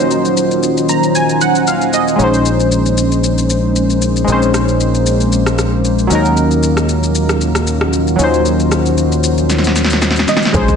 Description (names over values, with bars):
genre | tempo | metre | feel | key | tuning
amapiano | 115 BPM | 4/4 | swing 55% on 16ths | unclear | A4 = 440 Hz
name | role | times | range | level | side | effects
warm analog keys | accompaniment | 0.0-10.8 s | Gb3 to Bb5 | -15 LUFS | equal | chorus
deep dark ambient pad | sustained chords | 0.0-10.8 s | Eb3 to Gb4 | -17 LUFS | left 1 dB | chorus, built-in reverb, sidechain pumping
deep house drum kit | drums | 0.1-10.8 s | kick drum, rim click, shaker, snare drum | -20 LUFS | left 1 dB | overdrive, vintage 12-bit sampler grit
fingered electric bass | bass | 2.2-10.2 s | Bb1 to Eb2 | -16 LUFS | equal | none
soft round pluck | melody | 10.3-10.8 s | Ab4 to Eb5 | -18 LUFS | right 3 dB | chorus
deep log drum bass | bass | 10.5-10.8 s | Bb1 | -16 LUFS | equal | none
congas | percussion | 10.5-10.7 s | none | -24 LUFS | left 1 dB | none
room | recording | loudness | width
light reverb | nothing above 10.8 kHz | -11 LUFS | side -6 dB against mid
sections
0.0-10.5 A section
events
synth keys fill 0.6-2.2; drum fill 9.5-10.5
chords
0.0 Ebm7; 2.2 Bbm11; 6.1 Ebm7